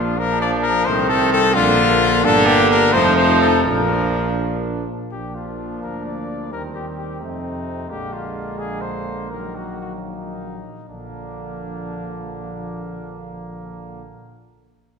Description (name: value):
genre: classical, brass quintet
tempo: 71-89 BPM (dotted quarters)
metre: 6/8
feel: rubato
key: Bb major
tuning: A4 = 440 Hz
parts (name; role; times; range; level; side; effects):
- warm cornet; melody; 0.0-14.0 s; D4 to D5; -22 LUFS; left 5 dB; none
- mellow trumpet; second line; 0.0-14.0 s; Bb3 to Eb4; -27 LUFS; right 3 dB; none
- brilliant trombone; accompaniment; 0.0-14.0 s; C3 to F3; -25 LUFS; right 3 dB; none
- mellow French horn; accompaniment; 0.0-14.0 s; F3 to Bb3; -27 LUFS; left 3 dB; none
- dark tuba; bass; 0.0-14.0 s; F1 to F2; -25 LUFS; right 2 dB; none
room: wet scoring stage reverb, RT60 1.7 s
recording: recorded in a church or concert hall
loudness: -16 LUFS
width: side -5 dB against mid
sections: 0.0-5.1 A section; 5.1-10.9 B section; 10.9-14.1 C section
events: slowing down 7.2-10.9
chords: 0.0 Bb; 0.9 Adim/C; 1.6 Bb; 2.2 Gm; 2.9 F7; 3.7 Bb; 5.8 Bb/D; 6.5 Cm/Eb; 7.2 F7; 7.9 Bb7; 9.3 Ebm/Bb; 10.9 Bb